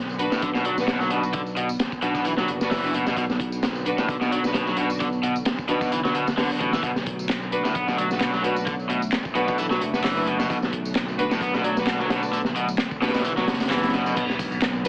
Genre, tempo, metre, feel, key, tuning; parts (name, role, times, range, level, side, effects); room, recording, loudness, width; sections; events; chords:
breakbeat, breaks; 131 BPM; 4/4; swing 55% on 16ths; B minor pentatonic; A4 = 439 Hz
phased analog pad; sustained chords; 0.0-14.9 s; D3 to B3; -33 LUFS; equal
modern bright fingered electric bass; bass; 0.0-14.9 s; F#1 to B1; -31 LUFS; equal
house drum kit; drums; 0.1-14.9 s; handclaps, hi-hat, tambourine; -35 LUFS; equal; overdrive
rich chamber string section; stabs; 0.2-14.9 s; D4 to D5; -28 LUFS; equal; tape echo
crunchy breakbeat drum kit; drums; 0.2-14.9 s; crash cymbal, hi-hat, kick drum, snare drum; -26 LUFS; equal
crunchy overdriven guitar; riff; 0.3-14.2 s; A2 to B3; -26 LUFS; equal; tape echo
impact; sound effects; 14.2-14.9 s; -39 LUFS; equal
moderate small room reverb, RT60 0.5 s; heavily compressed radio sound, multiband compression, AM radio sound; -21 LUFS; side -30 dB against mid
0.0-14.2 A section
impact 14.2-14.9
0.0 Bm